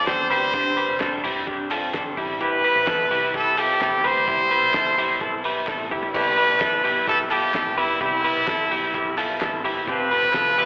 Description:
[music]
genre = jangly indie pop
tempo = 128 BPM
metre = 4/4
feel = straight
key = C major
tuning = A4 = 436 Hz
[part]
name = brilliant trumpet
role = melody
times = 0.0-10.7 s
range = E4 to C5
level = -23 LUFS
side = equal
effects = slapback echo
[part]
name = electric guitar through a small old amp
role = accompaniment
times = 0.0-10.7 s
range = G2 to A4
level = -32 LUFS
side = equal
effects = phaser, slapback echo
[part]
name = semi-hollow electric guitar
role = arpeggios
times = 0.0-10.7 s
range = C4 to B4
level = -28 LUFS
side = equal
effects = harmonic tremolo, slapback echo
[part]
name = vintage muted picked electric bass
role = bass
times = 0.0-10.7 s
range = E1 to E2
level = -44 LUFS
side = equal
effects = none
[part]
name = cloth-damped thuddy drum kit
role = drums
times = 0.1-10.7 s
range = crash cymbal, hi-hat, kick drum, ride cymbal, snare drum, toms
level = -33 LUFS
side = equal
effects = none
[part]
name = group handclap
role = percussion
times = 0.1-10.4 s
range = none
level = -37 LUFS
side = equal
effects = none
[sound]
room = moderate club reverb, RT60 0.6 s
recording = live gig heard through the venue's PA, recital hall reverb, telephone sound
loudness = -22 LUFS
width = mono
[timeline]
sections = 0.0-6.1 A section; 6.1-10.7 A section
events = drum fill 5.7-6.1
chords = 0.0 Fadd9; 2.2 Am7; 4.3 Cmaj7; 9.9 Fadd9

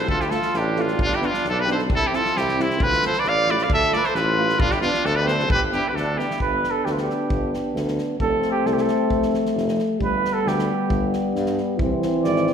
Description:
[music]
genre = balkan folk, Balkan brass band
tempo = 133 BPM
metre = 2/4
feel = straight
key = G mixolydian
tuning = A4 = 440 Hz
[part]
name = brilliant trumpet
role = melody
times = 0.0-6.4 s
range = E4 to F5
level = -22 LUFS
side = left 1 dB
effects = none
[part]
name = clear flugelhorn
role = second line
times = 0.0-12.5 s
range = C4 to D5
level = -25 LUFS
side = right 4 dB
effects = none
[part]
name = clear tuba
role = bass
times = 0.0-12.5 s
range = F1 to G2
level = -27 LUFS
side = equal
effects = none
[part]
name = unplugged drum kit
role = percussion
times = 0.1-12.5 s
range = kick drum, snare drum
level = -29 LUFS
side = equal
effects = none
[part]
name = clear euphonium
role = accompaniment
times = 0.3-12.5 s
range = B3 to F4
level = -29 LUFS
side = left 7 dB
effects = none
[part]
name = dark euphonium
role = accompaniment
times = 0.3-12.5 s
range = E3 to C4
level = -27 LUFS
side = right 1 dB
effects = none
[sound]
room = wet concert hall reverb, RT60 1.8 s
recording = recorded in a church or concert hall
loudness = -19 LUFS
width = side -7 dB against mid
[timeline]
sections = 0.0-6.4 A section; 6.4-12.5 B section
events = flugelhorn solo 6.4-12.5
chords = 0.0 Dm; 1.0 G; 1.9 C; 2.8 Dm; 4.6 G; 8.2 F; 10.0 G; 11.8 C

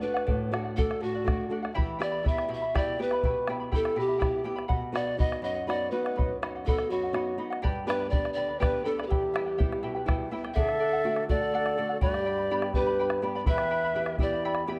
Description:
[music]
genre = andean folk, Andean ensemble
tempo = 82 BPM (dotted quarters)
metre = 6/8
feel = straight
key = E minor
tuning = A4 = 439 Hz
[part]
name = reedy pan flute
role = melody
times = 0.0-14.6 s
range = F#4 to E5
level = -32 LUFS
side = equal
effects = none
[part]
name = charango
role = accompaniment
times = 0.0-14.8 s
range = E4 to B5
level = -38 LUFS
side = equal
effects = none
[part]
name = nylon-string guitar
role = accompaniment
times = 0.0-14.8 s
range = E2 to G4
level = -37 LUFS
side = equal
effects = none
[part]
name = bombo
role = percussion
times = 0.2-14.7 s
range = none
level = -32 LUFS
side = equal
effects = none
[part]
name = bright large quena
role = second line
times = 10.6-14.6 s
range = G4 to B4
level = -34 LUFS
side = equal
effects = none
[sound]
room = moderate recital hall reverb, RT60 1.6 s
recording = dark, warm production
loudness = -28 LUFS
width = mono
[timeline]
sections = 0.0-10.6 A section; 10.6-14.8 B section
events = none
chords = 0.0 D; 1.8 Em; 4.7 B; 7.6 G; 9.1 Em; 10.6 D; 12.0 G; 13.5 Em

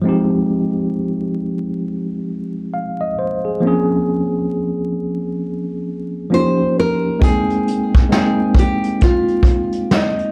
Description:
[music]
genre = lo-fi hip hop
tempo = 67 BPM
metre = 4/4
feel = swing 60% on 16ths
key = Ab major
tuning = A4 = 443 Hz
[part]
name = tine electric piano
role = accompaniment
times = 0.0-10.3 s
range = F3 to G5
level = -20 LUFS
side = equal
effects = none
[part]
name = nylon-string guitar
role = melody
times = 6.3-10.3 s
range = Eb4 to C5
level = -22 LUFS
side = equal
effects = plate reverb
[part]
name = vintage brush drum kit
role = drums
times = 7.2-10.3 s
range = hi-hat, kick drum, snare drum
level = -17 LUFS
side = equal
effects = vintage 12-bit sampler grit
[sound]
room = moderate small room reverb, RT60 0.5 s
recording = dark, warm production, vinyl crackle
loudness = -18 LUFS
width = mono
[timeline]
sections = 0.0-7.2 A section; 7.2-10.3 B section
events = none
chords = 0.1 Fm7; 3.6 Bbm9; 6.3 Eb7; 7.2 Abmaj7

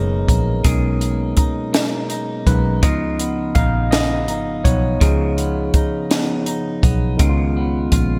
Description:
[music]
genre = slow six-eight R&B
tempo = 55 BPM (dotted quarters)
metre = 6/8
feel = straight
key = unclear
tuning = A4 = 440 Hz
[part]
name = clean electric guitar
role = second line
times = 0.0-8.2 s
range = B2 to G#4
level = -29 LUFS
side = equal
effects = subtle chorus
[part]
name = overdriven tine electric piano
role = accompaniment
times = 0.0-8.2 s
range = D#3 to E#5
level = -24 LUFS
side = equal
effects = none
[part]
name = vintage muted fingered electric bass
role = bass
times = 0.0-8.2 s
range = F#1 to C#2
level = -22 LUFS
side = equal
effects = none
[part]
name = compact cocktail drum kit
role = drums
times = 0.3-8.1 s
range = hi-hat, kick drum, snare drum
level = -20 LUFS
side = equal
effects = gated reverb
[sound]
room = light reverb, small room ambience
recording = bright 1980s-style digital production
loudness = -18 LUFS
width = mono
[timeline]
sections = 0.0-7.2 A section; 7.2-8.2 B section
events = tine electric piano solo 0.0-7.2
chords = 0.0 Bmaj13; 2.8 C#9

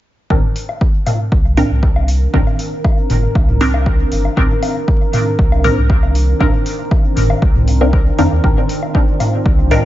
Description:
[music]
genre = dub techno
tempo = 118 BPM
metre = 4/4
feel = straight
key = C minor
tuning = A4 = 439 Hz
[part]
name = deep dark ambient pad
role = sustained chords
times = 1.3-9.8 s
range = Eb3 to Bb4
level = -22 LUFS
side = right 1 dB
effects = chorus, built-in reverb, sidechain pumping
[part]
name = filtered dub chord stab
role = stabs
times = 0.3-9.8 s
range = Eb3 to Bb4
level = -20 LUFS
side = equal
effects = phaser, cassette tape, sidechain pumping, dub echo
[part]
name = warm sub bass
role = bass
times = 0.3-9.8 s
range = G1 to F2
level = -15 LUFS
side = equal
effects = tube saturation, sidechain pumping
[part]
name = electronic kick drum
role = drums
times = 0.3-9.6 s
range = none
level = -14 LUFS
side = equal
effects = overdrive, small room ambience
[part]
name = electronic toms and woodblock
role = percussion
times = 0.3-9.8 s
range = none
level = -21 LUFS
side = left 1 dB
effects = sidechain pumping on toms, small room ambience, sidechain pumping on perc, dub echo
[part]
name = electronic hi-hat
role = drums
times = 0.6-9.8 s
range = none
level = -31 LUFS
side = left 2 dB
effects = overdrive, small room ambience
[sound]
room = little or no reverb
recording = vinyl crackle, nothing above 7.6 kHz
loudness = -12 LUFS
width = side -14 dB against mid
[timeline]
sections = 0.3-9.8 A section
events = none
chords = 0.3 Cm9

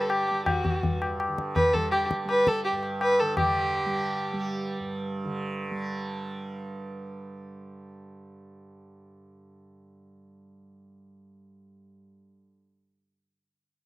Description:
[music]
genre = indian classical, Hindustani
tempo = 167 BPM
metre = 4/4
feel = straight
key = unclear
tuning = A4 = 439 Hz
[part]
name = warm violin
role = melody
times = 0.0-4.8 s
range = F#4 to B4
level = -26 LUFS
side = equal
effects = slapback echo
[part]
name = tanpura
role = drone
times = 0.0-12.4 s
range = G2 to G3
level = -35 LUFS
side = right 2 dB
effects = none
[part]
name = tabla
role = percussion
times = 0.1-3.5 s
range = none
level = -28 LUFS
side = left 2 dB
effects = none
[sound]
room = little or no reverb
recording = recorded outdoors, with no room sound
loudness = -25 LUFS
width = side -18 dB against mid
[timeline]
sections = 0.0-3.4 A section; 3.4-6.2 B section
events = speeding up 0.0-6.2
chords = none

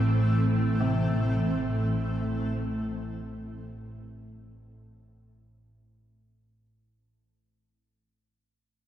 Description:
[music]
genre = dark ambient drone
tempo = free time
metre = none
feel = none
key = A minor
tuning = A4 = 440 Hz
[part]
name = granular cloud pad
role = sustained chords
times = 0.0-6.6 s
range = A2 to C4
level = -29 LUFS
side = equal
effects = built-in reverb
[part]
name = warm grand piano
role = arpeggios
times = 0.0-6.6 s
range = C3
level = -35 LUFS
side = left 1 dB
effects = tape echo
[part]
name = analog drone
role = drone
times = 0.0-6.7 s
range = A1 to A2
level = -29 LUFS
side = equal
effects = wide subtle chorus
[sound]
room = wet cathedral reverb, RT60 6.2 s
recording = in a vast, echoing space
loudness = -25 LUFS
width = side -11 dB against mid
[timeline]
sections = 0.0-6.6 A section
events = fade-out 0.0-6.6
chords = 0.0 Am

